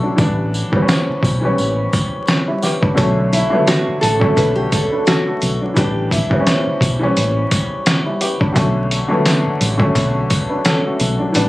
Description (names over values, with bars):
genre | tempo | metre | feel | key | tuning
hip hop, boom-bap hip-hop | 86 BPM | 4/4 | swing 56% on 16ths | B minor | A4 = 441 Hz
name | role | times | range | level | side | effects
warm upright piano | accompaniment | 0.0-11.5 s | D3 to B4 | -18 LUFS | left 1 dB | none
deep dub fingered electric bass | bass | 0.2-11.5 s | A1 to B1 | -19 LUFS | equal | none
trip hop sampler-style drum kit | drums | 0.2-11.5 s | hi-hat, kick drum, snare drum | -18 LUFS | equal | none
sleigh bells | percussion | 0.2-11.5 s | none | -29 LUFS | right 1 dB | none
nylon-string guitar | melody | 3.3-7.3 s | E4 to B4 | -19 LUFS | equal | digital delay
room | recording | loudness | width
little or no reverb | recorded on a phone in the room, club reverb, vinyl crackle | -14 LUFS | side -17 dB against mid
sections
0.0-11.5 A section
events
break 0.0-3.0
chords
0.2 A9sus4; 3.0 Bm7; 5.8 A9sus4; 8.6 Bm7